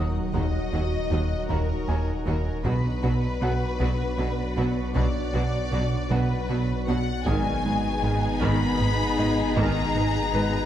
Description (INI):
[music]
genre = cinematic, hybrid orchestral and electronic film score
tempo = 52 BPM (dotted quarters)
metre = 6/8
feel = straight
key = unclear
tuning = A4 = 440 Hz
[part]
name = warm symphonic violin section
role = melody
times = 0.0-10.7 s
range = Bb4 to Cb6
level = -31 LUFS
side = left 4 dB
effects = none
[part]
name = warm symphonic violin section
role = second line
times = 0.0-10.7 s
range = D4 to Ab4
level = -36 LUFS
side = left 3 dB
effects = none
[part]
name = rich symphonic viola section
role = accompaniment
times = 0.0-10.7 s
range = Eb3 to B3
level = -33 LUFS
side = equal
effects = none
[part]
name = dark trombone section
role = sustained chords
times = 0.0-10.7 s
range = B2 to Ab3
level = -36 LUFS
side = right 3 dB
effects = none
[part]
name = organ-like drone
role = sustained chords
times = 0.0-10.7 s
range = Gb3 to Eb5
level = -34 LUFS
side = right 1 dB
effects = ensemble chorus, built-in reverb, phaser
[part]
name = warm French horn section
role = sustained chords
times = 0.0-10.7 s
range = Gb3 to Eb4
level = -35 LUFS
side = left 4 dB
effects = none
[part]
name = smooth gliding synth bass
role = riff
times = 0.0-10.6 s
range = Eb2 to B2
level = -28 LUFS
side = right 1 dB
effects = none
[part]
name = rich symphonic cello section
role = bass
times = 0.0-10.4 s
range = Eb2 to B2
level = -34 LUFS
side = right 2 dB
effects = none
[part]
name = rich symphonic double bass section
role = bass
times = 0.0-10.4 s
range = Ab1 to Eb2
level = -33 LUFS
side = right 2 dB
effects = none
[part]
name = saturated sub bass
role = bass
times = 0.0-10.7 s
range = Eb1 to B1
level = -32 LUFS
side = equal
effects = none
[part]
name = clear concert grand piano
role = texture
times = 0.0-10.7 s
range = F#4 to Eb6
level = -37 LUFS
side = left 1 dB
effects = tape echo
[part]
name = taiko ensemble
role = drums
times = 0.3-10.3 s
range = none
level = -33 LUFS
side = equal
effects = none
[sound]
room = moderate scoring stage reverb, RT60 1.8 s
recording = none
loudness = -22 LUFS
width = side -11 dB against mid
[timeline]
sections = 0.0-10.7 A section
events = none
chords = 0.0 Ebm; 2.6 Bm; 7.3 Abm